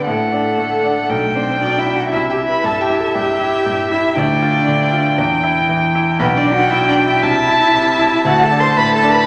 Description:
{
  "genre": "quick classical-period movement for piano quartet",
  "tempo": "117 BPM",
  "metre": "4/4",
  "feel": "straight",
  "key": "G major",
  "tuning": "A4 = 440 Hz",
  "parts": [
    { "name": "rich violin", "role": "melody", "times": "0.0-9.3 s", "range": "E5 to A5", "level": "-19 LUFS", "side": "equal", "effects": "none" },
    { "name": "rich violin", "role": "second line", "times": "0.0-9.3 s", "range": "A4 to C6", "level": "-24 LUFS", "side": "equal", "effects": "none" },
    { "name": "bright grand piano", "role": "accompaniment", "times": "0.0-9.3 s", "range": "B1 to F4", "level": "-21 LUFS", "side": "equal", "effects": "none" },
    { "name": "rich cello", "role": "second line", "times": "0.1-9.3 s", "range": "A3 to C5", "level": "-22 LUFS", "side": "equal", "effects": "none" }
  ],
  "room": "wet recital hall reverb, RT60 1.7 s",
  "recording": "none",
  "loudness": "-15 LUFS",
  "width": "mono",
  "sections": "0.0-9.3 A section",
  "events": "none",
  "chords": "0.1 D/A; 1.1 G/B; 2.1 C; 4.2 G5/D; 5.2 Em; 6.2 G/B; 7.2 Am/C; 8.3 D5",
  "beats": "| 0.07 0.58 1.10 1.61 | 2.12 2.64 3.15 3.66 | 4.17 4.68 5.18 5.69 | 6.20 6.71 7.23 7.74 | 8.25 8.77"
}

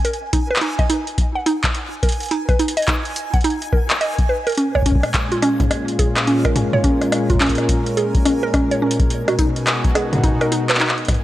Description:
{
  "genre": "IDM",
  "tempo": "106 BPM",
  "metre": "4/4",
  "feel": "swing 62% on 16ths",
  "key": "unclear",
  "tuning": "A4 = 440 Hz",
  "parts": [
    { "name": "mallet-like synth pluck", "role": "arpeggios", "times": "0.0-10.9 s", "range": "Db4 to F#5", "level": "-21 LUFS", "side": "right 1 dB", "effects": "chorus, cassette tape, tape echo" },
    { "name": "electro analog drum machine", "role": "drums", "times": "0.0-11.2 s", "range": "handclaps, hi-hat, rim click, toms", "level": "-22 LUFS", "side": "equal", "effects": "tape echo" },
    { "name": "backwards swelling texture", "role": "texture", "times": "0.0-11.2 s", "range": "Ab5", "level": "-32 LUFS", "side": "right 3 dB", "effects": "built-in reverb" },
    { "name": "electronic kick drum", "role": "drums", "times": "0.3-11.2 s", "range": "none", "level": "-18 LUFS", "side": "equal", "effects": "none" },
    { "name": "warm analog pad", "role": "sustained chords", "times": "4.6-11.2 s", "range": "Bb2 to Bb4", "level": "-21 LUFS", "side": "left 1 dB", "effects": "chorus, vintage 12-bit sampler grit" }
  ],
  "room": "light reverb",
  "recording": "dry, gritty hardware recording, transformer saturation",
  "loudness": "-16 LUFS",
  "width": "side -14 dB against mid",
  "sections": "0.0-11.2 A section",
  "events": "none",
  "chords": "0.0 N.C.; 4.6 Bbm7; 9.1 Abm9/Cb",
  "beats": "| 0.05 0.61 1.18 1.75 | 2.31 2.88 3.44 4.01 | 4.58 5.14 5.71 6.27 | 6.84 7.41 7.97 8.54 | 9.10 9.67 10.24 10.80"
}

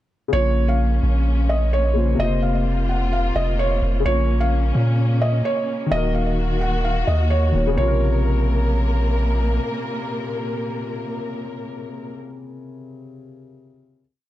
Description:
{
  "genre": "hip hop, trap",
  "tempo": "129 BPM",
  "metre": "4/4",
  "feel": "half-time",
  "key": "Bb minor",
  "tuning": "A4 = 440 Hz",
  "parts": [
    { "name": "felt-muted upright piano", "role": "melody", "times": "0.3-9.1 s", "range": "Db5 to Gb5", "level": "-25 LUFS", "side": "right 1 dB", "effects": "digital delay" },
    { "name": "dark grand piano", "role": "accompaniment", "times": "0.3-14.0 s", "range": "C3 to Db5", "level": "-27 LUFS", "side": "left 3 dB", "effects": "none" },
    { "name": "dark symphonic string section", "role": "sustained chords", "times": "0.3-12.2 s", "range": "Bb2 to Bb4", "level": "-28 LUFS", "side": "left 1 dB", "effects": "none" },
    { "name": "long sustained 808-style bass", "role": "bass", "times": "0.3-9.6 s", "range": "Eb1 to Bb2", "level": "-19 LUFS", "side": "equal", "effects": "none" }
  ],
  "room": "light reverb, small room ambience",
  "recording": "dark, warm production",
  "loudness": "-18 LUFS",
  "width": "side -14 dB against mid",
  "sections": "0.3-7.8 breakdown; 7.8-11.5 final chord",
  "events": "none",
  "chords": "0.3 Bbmadd9; 2.2 Fsus4; 4.1 Bbm; 5.9 Ebm; 7.8 Bbmadd9",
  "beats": "| 0.33 0.80 1.26 1.73 | 2.19 2.66 3.12 3.59 | 4.05 4.52 4.98 5.45 | 5.91 6.38 6.84 7.31 | 7.78 8.24 8.71 9.17 | 9.63 10.10 10.56 11.03"
}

